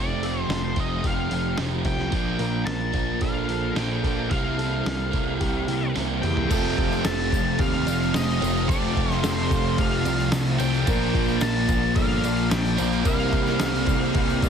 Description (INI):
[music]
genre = rock, shoegaze and dream pop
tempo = 110 BPM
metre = 4/4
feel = straight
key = F major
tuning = A4 = 440 Hz
[part]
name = octave-fuzz lead guitar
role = melody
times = 0.0-14.5 s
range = C5 to A5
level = -31 LUFS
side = left 2 dB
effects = distortion, digital delay
[part]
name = overdriven electric guitar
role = riff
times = 0.0-14.5 s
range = F2 to E4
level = -28 LUFS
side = right 14 dB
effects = reverse reverb
[part]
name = thick fuzz guitar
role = riff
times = 0.0-14.5 s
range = F2 to C4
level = -28 LUFS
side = left 9 dB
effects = distortion, ensemble chorus
[part]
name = growling picked electric bass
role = bass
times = 0.0-14.5 s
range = F1 to G2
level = -29 LUFS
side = equal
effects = overdrive
[part]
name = mellow electric guitar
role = arpeggios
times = 0.2-14.5 s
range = G4 to D5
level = -34 LUFS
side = equal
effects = wide subtle chorus, digital delay
[part]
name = trip hop sampler-style drum kit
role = drums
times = 0.2-14.5 s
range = crash cymbal, hi-hat, kick drum, snare drum, toms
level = -27 LUFS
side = equal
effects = none
[part]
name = phased string machine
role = sustained chords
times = 6.5-14.5 s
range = A3 to A5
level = -32 LUFS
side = left 1 dB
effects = ensemble chorus, phaser
[part]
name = cranked stack guitar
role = riff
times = 6.5-14.5 s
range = F2 to F4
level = -31 LUFS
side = equal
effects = overdrive
[part]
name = tambourine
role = percussion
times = 6.5-14.5 s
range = none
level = -41 LUFS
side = left 10 dB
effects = none
[sound]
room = little or no reverb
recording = dense, heavily limited modern master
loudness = -21 LUFS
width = side -7 dB against mid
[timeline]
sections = 0.0-6.5 A section; 6.5-14.5 B section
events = drum fill 6.0-6.5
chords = 0.0 Fadd9; 2.1 Bbmaj7; 4.3 C7sus4; 6.5 Fadd9; 10.9 Bbmaj7; 13.1 C7sus4